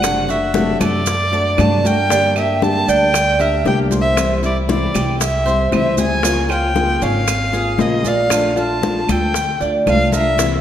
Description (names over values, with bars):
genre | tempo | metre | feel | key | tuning
latin, Cuban son and guajira | 116 BPM | 4/4 | straight | unclear | A4 = 440 Hz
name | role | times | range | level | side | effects
dark violin | melody | 0.0-10.6 s | D5 to A5 | -19 LUFS | equal | none
fingerpicked plugged-in steel-string acoustic guitar | accompaniment | 0.0-10.6 s | C3 to Ab4 | -21 LUFS | left 3 dB | none
Cuban tres | arpeggios | 0.0-10.6 s | Db4 to D5 | -21 LUFS | right 4 dB | none
upright bass | bass | 0.0-10.6 s | Gb1 to G2 | -22 LUFS | right 1 dB | none
bongos | percussion | 0.0-10.6 s | none | -27 LUFS | left 6 dB | none
claves | percussion | 0.0-10.1 s | none | -31 LUFS | right 6 dB | none
congas | percussion | 0.0-10.6 s | none | -24 LUFS | left 2 dB | none
maracas | percussion | 0.0-10.6 s | none | -28 LUFS | right 9 dB | none
room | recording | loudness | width
wet recital hall reverb, RT60 1.7 s | none | -14 LUFS | side -10 dB against mid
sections
0.0-10.6 A section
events
none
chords
0.0 D7/F#; 2.1 Gm; 4.2 C; 6.2 Db6; 8.3 Bbmaj7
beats
| 0.03 0.55 1.07 1.58 | 2.10 2.62 3.14 3.65 | 4.17 4.69 5.21 5.72 | 6.24 6.76 7.28 7.80 | 8.31 8.83 9.35 9.87 | 10.38